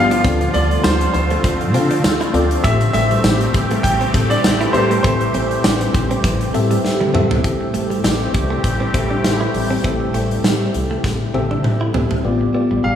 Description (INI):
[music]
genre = 1980s-style pop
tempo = 100 BPM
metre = 4/4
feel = swing 55% on 16ths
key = A minor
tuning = A4 = 440 Hz
[part]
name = bright baby grand piano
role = melody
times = 0.0-7.1, 12.8-13.0 s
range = C5 to G5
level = -22 LUFS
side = right 1 dB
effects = diffuse ambient delay, shimmer reverb
[part]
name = FM electric piano with tremolo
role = accompaniment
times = 0.0-13.0 s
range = A2 to F5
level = -21 LUFS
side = left 3 dB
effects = shimmer reverb
[part]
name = sweeping resonant pad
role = sustained chords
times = 0.0-12.2 s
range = D3 to G4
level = -22 LUFS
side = equal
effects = chorus, shimmer reverb
[part]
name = upright bass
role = bass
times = 0.0-13.0 s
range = G1 to D3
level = -21 LUFS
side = equal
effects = none
[part]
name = direct-recorded clean electric guitar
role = riff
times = 0.1-12.9 s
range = E3 to E4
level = -26 LUFS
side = right 4 dB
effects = lush chorus, diffuse ambient delay, shimmer reverb
[part]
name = big rock drum kit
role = drums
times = 0.1-12.2 s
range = hi-hat, kick drum, snare drum, tambourine, toms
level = -20 LUFS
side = equal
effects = none
[sound]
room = wet lush hall reverb, RT60 1.7 s, small room ambience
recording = dreamy mix soaked in reverb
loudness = -15 LUFS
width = side -9 dB against mid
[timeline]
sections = 0.0-7.4 A section; 7.4-12.2 B section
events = drum fill 6.8-7.4, 11.0-12.2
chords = 0.2 Dm7; 2.6 Am7; 12.2 G7/A